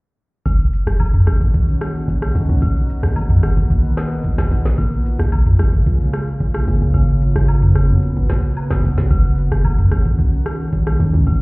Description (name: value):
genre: amapiano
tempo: 111 BPM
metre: 4/4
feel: straight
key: F# major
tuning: A4 = 440 Hz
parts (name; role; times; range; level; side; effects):
- glassy FM pad; sustained chords; 1.1-11.4 s; C#3 to F#4; -22 LUFS; equal; ensemble chorus, built-in reverb, sidechain pumping
- deep log drum bass; bass; 0.5-11.4 s; F#1 to C#2; -16 LUFS; equal; none
- afro-pop drum kit; drums; 0.5-11.4 s; hi-hat, kick drum, rim click, shaker, snare drum, toms; -17 LUFS; equal; none
- agogo bells and woodblock; percussion; 0.5-11.4 s; none; -36 LUFS; left 2 dB; none
room: little or no reverb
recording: heard muffled through a wall, club reverb, EQ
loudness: -14 LUFS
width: side -26 dB against mid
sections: 0.5-11.4 A section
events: drop 0.5-11.4; kick muted 6.9-9.1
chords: 0.5 F#6; 2.4 Bmaj7; 4.5 A#m7; 6.7 G#m11; 9.1 F#6